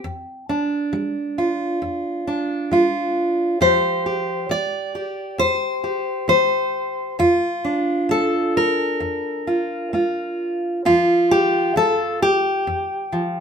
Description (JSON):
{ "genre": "folk, solo fingerstyle acoustic guitar", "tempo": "67 BPM", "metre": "4/4", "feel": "straight", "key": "unclear", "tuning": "A4 = 436 Hz", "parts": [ { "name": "fingerpicked steel-string acoustic guitar", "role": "solo", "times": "0.0-13.4 s", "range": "F2 to D5", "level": "-18 LUFS", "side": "equal", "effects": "none" } ], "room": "moderate studio reverb, RT60 0.7 s", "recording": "minimal, uncompressed stereo recording", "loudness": "-18 LUFS", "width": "side -6 dB against mid", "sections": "0.0-10.9 A section; 10.9-13.4 A section", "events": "none", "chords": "0.0 G5/F; 3.6 Fsus2; 7.2 Bb/F; 10.9 N.C.", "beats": "| 0.04 0.93 1.82 2.71 | 3.61 4.50 5.39 6.29 | 7.19 8.10 9.01 9.94 | 10.86 11.77 12.68" }